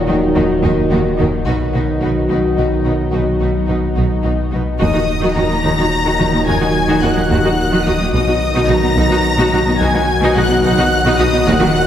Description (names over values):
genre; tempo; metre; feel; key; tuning
cinematic, hybrid orchestral and electronic film score; 72 BPM (dotted quarters); 6/8; straight; unclear; A4 = 440 Hz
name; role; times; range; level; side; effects
dark trombone section; sustained chords; 0.0-11.9 s; Bb2 to D#3; -21 LUFS; right 2 dB; none
glassy FM pad; sustained chords; 0.0-11.9 s; Gb3 to Eb5; -24 LUFS; left 1 dB; ensemble chorus, built-in reverb
mellow French horn section; sustained chords; 0.0-11.9 s; Gb3 to F#4; -22 LUFS; left 4 dB; none
sub bass with octave; bass; 0.0-11.9 s; Eb1 to B1; -22 LUFS; equal; none
rich symphonic violin section; melody; 0.1-11.9 s; Bb4 to Bb6; -23 LUFS; left 2 dB; none
warm symphonic violin section; second line; 0.1-11.9 s; Gb4 to Bb5; -22 LUFS; left 2 dB; none
rich chamber viola section; accompaniment; 0.1-11.7 s; Bb3 to Gb4; -21 LUFS; right 1 dB; none
rich symphonic cello section; bass; 0.1-11.7 s; B2 to Eb3; -22 LUFS; right 1 dB; none
rich symphonic double bass section; bass; 0.1-11.5 s; B1 to Eb2; -21 LUFS; right 2 dB; none
room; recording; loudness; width
wet scoring stage reverb, RT60 1.5 s; heard from further back in the room; -12 LUFS; side -10 dB against mid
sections
0.0-4.8 A section; 4.8-11.9 B section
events
build-up 0.0-4.8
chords
0.0 Ebm; 1.5 B; 4.8 Ebm; 8.1 B